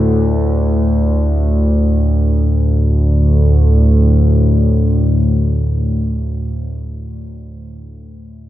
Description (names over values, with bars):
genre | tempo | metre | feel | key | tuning
ambient | free time | none | none | unclear | A4 = 440 Hz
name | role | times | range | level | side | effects
analog drone | solo | 0.0-6.9 s | D2 to A2 | -12 LUFS | equal | chorus, tape echo
room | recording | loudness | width
wet cathedral reverb, RT60 7.2 s | in a vast, echoing space | -12 LUFS | side -14 dB against mid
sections
0.0-2.5 A section; 2.5-7.3 B section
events
none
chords
0.0 D5